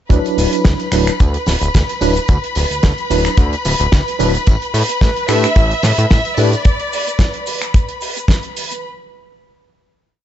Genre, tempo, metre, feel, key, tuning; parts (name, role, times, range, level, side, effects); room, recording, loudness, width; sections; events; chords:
nu-disco, nu disco; 110 BPM; 4/4; swing 54% on 16ths; A4 = 437 Hz
tine electric piano; accompaniment; 0.1-6.5 s; F#3 to B4; -19 LUFS; right 1 dB; medium stereo tremolo, sidechain pumping
rich studio string section; sustained chords; 0.1-8.8 s; B4 to B5; -23 LUFS; left 1 dB; sidechain pumping
fat analog bass; bass; 0.1-6.6 s; D1 to A2; -17 LUFS; equal
damped 70s drum kit; drums; 0.1-8.8 s; finger snaps, hi-hat, shaker, snare drum; -21 LUFS; right 2 dB; small room ambience
kick drum; drums; 0.1-8.4 s; -12 LUFS; equal; small room ambience
tambourine; percussion; 0.1-6.6 s; -33 LUFS; left 4 dB
warm studio violin section; melody; 5.0-7.5 s; B4 to E5; -20 LUFS; right 1 dB; digital delay
small room ambience; nothing above 7.9 kHz; -13 LUFS; side -11 dB against mid
0.1-8.8 drop
drop 0.1-8.8
0.1 D69; 4.5 Asus4